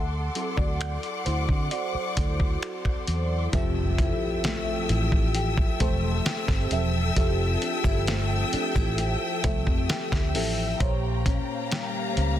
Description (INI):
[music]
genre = contemporary R&B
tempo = 66 BPM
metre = 4/4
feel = straight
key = F major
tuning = A4 = 440 Hz
[part]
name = FM electric piano with soft pad layer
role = accompaniment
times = 0.0-12.4 s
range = Bb2 to F#5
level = -31 LUFS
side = right 1 dB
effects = chorus, phaser
[part]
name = warm studio string section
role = sustained chords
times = 0.0-12.4 s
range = Bb3 to E6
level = -32 LUFS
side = left 2 dB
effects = sidechain pumping
[part]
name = vintage muted fingered electric bass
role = bass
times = 0.0-12.4 s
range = E1 to D3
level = -27 LUFS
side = equal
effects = none
[part]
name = dusty soul sampler-style drum kit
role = drums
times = 0.4-12.4 s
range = finger snaps, hi-hat, kick drum, snare drum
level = -26 LUFS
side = equal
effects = soft clipping on snare
[part]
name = nylon-string guitar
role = arpeggios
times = 3.5-12.4 s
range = F3 to G4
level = -33 LUFS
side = left 3 dB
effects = digital delay
[part]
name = impact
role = sound effects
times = 3.5-7.2 s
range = none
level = -36 LUFS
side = equal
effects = none
[sound]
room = little or no reverb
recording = dense, heavily limited modern master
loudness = -23 LUFS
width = side -12 dB against mid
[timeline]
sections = 0.0-3.5 A section; 3.5-12.4 B section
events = FM electric piano solo 0.0-3.5; impact 3.5-7.2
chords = 0.0 D7; 3.5 Fmaj9; 10.8 Bbm6